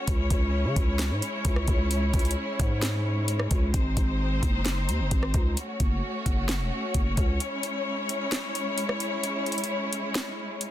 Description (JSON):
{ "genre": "hip hop, trap", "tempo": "131 BPM", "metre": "4/4", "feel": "half-time", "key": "C# harmonic minor", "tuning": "A4 = 442 Hz", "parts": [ { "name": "warm studio string section", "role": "sustained chords", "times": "0.0-10.7 s", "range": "G#3 to C#5", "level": "-30 LUFS", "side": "left 1 dB", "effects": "none" }, { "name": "growling 808-style bass", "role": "bass", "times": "0.1-7.4 s", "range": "E1 to C#3", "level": "-27 LUFS", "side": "equal", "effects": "none" }, { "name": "trap drum kit", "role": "drums", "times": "0.1-10.7 s", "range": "handclaps, hi-hat, kick drum, rim click, snare drum", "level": "-27 LUFS", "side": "equal", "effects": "none" } ], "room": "little or no reverb", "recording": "dense, heavily limited modern master", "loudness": "-24 LUFS", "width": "side -12 dB against mid", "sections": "0.0-10.7 A section", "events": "break 7.4-10.7", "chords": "0.1 C#m; 3.7 G#; 5.6 F#m; 7.4 C#m", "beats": "| 0.07 0.53 0.99 1.45 | 1.91 2.37 2.82 3.28 | 3.74 4.20 4.66 5.11 | 5.57 6.03 6.49 6.95 | 7.40 7.86 8.32 8.78 | 9.23 9.69 10.15 10.61" }